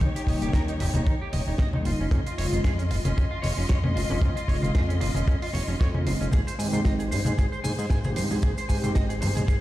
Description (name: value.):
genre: nu-disco, nu disco.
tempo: 114 BPM.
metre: 4/4.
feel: swing 55% on 16ths.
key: unclear.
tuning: A4 = 440 Hz.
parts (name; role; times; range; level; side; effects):
dark symphonic string section; sustained chords; 0.0-9.6 s; Ab3 to C6; -35 LUFS; left 2 dB; sidechain pumping.
electric guitar at the edge of break-up; riff; 0.0-9.6 s; Db4 to Ab5; -35 LUFS; right 3 dB; wide subtle chorus, low-pass filter, tape echo.
fat analog bass; bass; 0.0-9.6 s; Eb1 to Ab2; -27 LUFS; equal; tube saturation.
damped 70s drum kit; drums; 0.0-9.6 s; cabasa, hi-hat, snare drum; -36 LUFS; right 2 dB; none.
kick drum; drums; 0.0-9.6 s; none; -24 LUFS; equal; none.
congas and tube shaker; percussion; 0.0-9.6 s; none; -31 LUFS; left 1 dB; none.
warm analog pad; accompaniment; 0.3-8.9 s; Db3 to G4; -32 LUFS; equal; chorus, sidechain pumping, tape echo.
room: little or no reverb.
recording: played on a big sound system in a bare room, stone room reverb.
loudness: -23 LUFS.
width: side -15 dB against mid.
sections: 0.0-9.6 A section.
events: filter sweep on clean electric guitar 0.0-9.6; filter sweep on analog synth pad 0.0-9.6.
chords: 0.0 Eb7; 1.9 Dbmaj7/F; 6.3 Abmaj7.